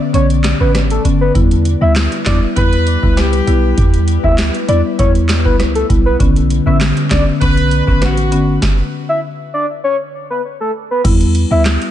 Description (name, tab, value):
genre	dancehall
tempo	99 BPM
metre	4/4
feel	straight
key	E dorian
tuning	A4 = 440 Hz
part	marimba with medium mallets	accompaniment	0.0-11.7 s	D3 to E4	-18 LUFS	left 3 dB	none
part	ethereal airy pad	sustained chords	0.0-11.9 s	D3 to D5	-24 LUFS	equal	ensemble chorus, built-in reverb, sidechain pumping
part	soft octave-layered synth lead	melody	0.1-11.6 s	A4 to E5	-19 LUFS	left 1 dB	chorus, ping-pong delay
part	clean 808-style bass	bass	0.1-11.8 s	G1 to E2	-14 LUFS	right 1 dB	none
part	booming analog drum machine	drums	0.1-11.9 s	crash cymbal, handclaps, hi-hat, kick drum, rim click, snare drum	-16 LUFS	right 1 dB	none
part	clear horn section	second line	2.6-8.6 s	F#4 to B4	-21 LUFS	equal	ping-pong delay
room	digital ambience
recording	nothing above 10.3 kHz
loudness	-11 LUFS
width	side -11 dB against mid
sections	0.0-11.0 A section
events	kick muted 0.1-1.4; stop 8.6-11.0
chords	0.0 Bmadd9; 1.4 Em; 6.2 Bmadd9; 11.0 Em